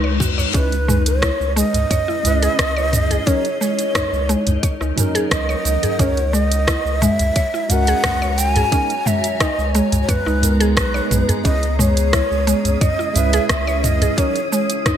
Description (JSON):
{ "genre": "organic downtempo", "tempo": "88 BPM", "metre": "4/4", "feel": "straight", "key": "C# dorian", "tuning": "A4 = 440 Hz", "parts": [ { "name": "breathy low ney", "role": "melody", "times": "0.0-15.0 s", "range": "B4 to G#5", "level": "-22 LUFS", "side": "equal", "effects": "digital delay" }, { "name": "granular cloud pad", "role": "sustained chords", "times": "0.0-15.0 s", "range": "G#3 to A#5", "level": "-27 LUFS", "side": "equal", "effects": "built-in reverb, sidechain pumping" }, { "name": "mallet-like synth pluck", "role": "arpeggios", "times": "0.0-15.0 s", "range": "G#3 to C#5", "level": "-24 LUFS", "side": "equal", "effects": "chorus, cassette tape, digital delay" }, { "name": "warm sub bass", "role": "bass", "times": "0.0-14.1 s", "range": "B1 to C#2", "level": "-20 LUFS", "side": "equal", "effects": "sidechain pumping" }, { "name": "reverse cymbal", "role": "sound effects", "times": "0.0-0.5 s", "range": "none", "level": "-26 LUFS", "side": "left 9 dB", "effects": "none" }, { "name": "electronic kick drum", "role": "drums", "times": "0.2-15.0 s", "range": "none", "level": "-20 LUFS", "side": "equal", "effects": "none" }, { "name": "organic electronic drum kit", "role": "drums", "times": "0.2-15.0 s", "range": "cabasa, hi-hat, rim click, toms", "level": "-22 LUFS", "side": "right 1 dB", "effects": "gated reverb" }, { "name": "udu", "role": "percussion", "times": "0.4-14.1 s", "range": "none", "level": "-24 LUFS", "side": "right 1 dB", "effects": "none" }, { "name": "tine electric piano", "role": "accompaniment", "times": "0.5-14.4 s", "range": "F#3 to B4", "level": "-26 LUFS", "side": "right 3 dB", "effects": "ensemble chorus, sidechain pumping, digital delay" }, { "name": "wind-like tuned noise texture", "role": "texture", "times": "11.9-15.0 s", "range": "D#6", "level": "-30 LUFS", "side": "right 1 dB", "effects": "built-in reverb, lush chorus" } ], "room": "light reverb", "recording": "bright 1980s-style digital production", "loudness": "-15 LUFS", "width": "side -9 dB against mid", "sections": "0.5-15.0 A section", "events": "reverse cymbal 0.0-0.5", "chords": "0.0 G#m/C#; 0.5 C#m7; 3.3 D#m7/C#; 6.0 F#add9/C#; 8.7 G#madd9; 11.5 C#m7; 14.2 D#m7/C#" }